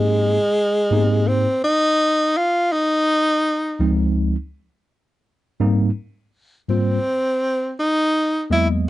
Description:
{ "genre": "hip hop", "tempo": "83 BPM", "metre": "4/4", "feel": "swing 64% on 16ths", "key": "Ab major", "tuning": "A4 = 440 Hz", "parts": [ { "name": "breathy tenor saxophone", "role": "melody", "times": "0.0-8.7 s", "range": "Ab3 to F4", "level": "-18 LUFS", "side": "equal", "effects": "none" }, { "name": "mellow tine electric piano", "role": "accompaniment", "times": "0.0-8.9 s", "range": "Db2 to D#5", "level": "-18 LUFS", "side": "equal", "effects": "medium stereo tremolo" } ], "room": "light reverb", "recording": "dark, warm production, nothing above 10.9 kHz", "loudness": "-17 LUFS", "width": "side -16 dB against mid", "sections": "0.0-8.9 A section", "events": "none", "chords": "0.0 Abmaj9; 2.7 Dbmaj9; 5.6 Abmaj9" }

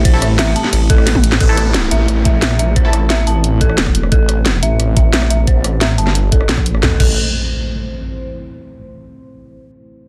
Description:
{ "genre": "dark technical drum and bass", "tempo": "177 BPM", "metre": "4/4", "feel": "straight", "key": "A phrygian", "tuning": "A4 = 440 Hz", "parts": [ { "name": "deep dark ambient pad", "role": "sustained chords", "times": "0.0-7.0 s", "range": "A3 to C5", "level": "-27 LUFS", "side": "equal", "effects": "chorus, built-in reverb, sidechain pumping" }, { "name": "snarling distorted saw bass", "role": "bass", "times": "0.0-7.2 s", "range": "E1 to Bb1", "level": "-18 LUFS", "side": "equal", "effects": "distortion, tube saturation" }, { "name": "dark detuned synth bell", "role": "arpeggios", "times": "0.1-7.2 s", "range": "A4 to A5", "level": "-25 LUFS", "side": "equal", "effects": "chorus, sidechain pumping, low-pass filter, tape echo" }, { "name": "band-passed chord stab", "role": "stabs", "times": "0.1-3.0 s", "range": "A3 to A4", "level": "-25 LUFS", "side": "equal", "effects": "phaser, tape echo" }, { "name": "drum and bass drum kit", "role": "drums", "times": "0.1-7.1 s", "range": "crash cymbal, hi-hat, ride cymbal, rim click, snare drum, toms", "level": "-20 LUFS", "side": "equal", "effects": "none" }, { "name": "electronic kick drum", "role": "drums", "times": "0.1-7.1 s", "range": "none", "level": "-16 LUFS", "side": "equal", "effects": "none" }, { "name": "downlifter and impact", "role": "sound effects", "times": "1.4-4.1, 6.8-8.2 s", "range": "none", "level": "-26 LUFS", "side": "equal", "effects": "none" } ], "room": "light reverb", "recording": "dense, heavily limited modern master", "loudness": "-14 LUFS", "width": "mono", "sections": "0.0-1.4 A section; 1.4-6.8 B section; 6.8-8.2 C section", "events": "drop 0.0-1.4; drum fill 1.1-1.4; filter sweep on detuned saw bass 1.4-6.8; filter sweep on ambient pad 1.4-6.8; filter sweep on synth bell 1.4-6.8", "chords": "0.0 Am" }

